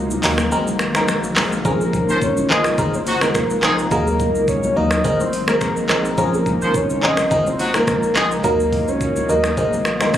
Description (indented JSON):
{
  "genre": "afrobeats",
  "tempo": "106 BPM",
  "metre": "4/4",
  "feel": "swing 55% on 16ths",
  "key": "unclear",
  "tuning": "A4 = 439 Hz",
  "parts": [
    { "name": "barking FM electric piano", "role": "accompaniment", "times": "0.0-10.2 s", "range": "F3 to Bb4", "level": "-21 LUFS", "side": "equal", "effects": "chorus, phaser" },
    { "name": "granular cloud pad", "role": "sustained chords", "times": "0.0-10.2 s", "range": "Bb3", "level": "-27 LUFS", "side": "left 1 dB", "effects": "built-in reverb" },
    { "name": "round analog bass", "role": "bass", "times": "0.0-10.2 s", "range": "Ab1 to Eb2", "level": "-27 LUFS", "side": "equal", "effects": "none" },
    { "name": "afro-pop drum kit", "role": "drums", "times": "0.1-10.2 s", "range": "finger snaps, handclaps, hi-hat, kick drum, rim click, shaker", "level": "-22 LUFS", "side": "equal", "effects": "none" },
    { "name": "congas", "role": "percussion", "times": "0.1-10.1 s", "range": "none", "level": "-28 LUFS", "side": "left 1 dB", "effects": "none" },
    { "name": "soft octave-layered synth lead", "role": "melody", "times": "1.7-10.2 s", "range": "Ab4 to Eb5", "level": "-21 LUFS", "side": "equal", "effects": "chorus, phaser, tape echo" },
    { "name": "warm horn section", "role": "second line", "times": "2.1-8.3 s", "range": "Eb3 to C5", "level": "-24 LUFS", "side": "equal", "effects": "none" }
  ],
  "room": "light reverb",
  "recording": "recorded on a phone in the room, club reverb",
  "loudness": "-16 LUFS",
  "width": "side -11 dB against mid",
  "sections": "0.0-1.6 A section; 1.6-10.2 B section",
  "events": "break 0.0-1.6",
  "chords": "0.0 Ebm; 0.5 Abadd9; 1.6 Bbmadd9; 2.8 Abadd9; 3.9 Ebm; 5.0 Abadd9; 6.2 Bbmadd9; 7.3 Abadd9; 8.4 Ebm; 9.6 Abadd9"
}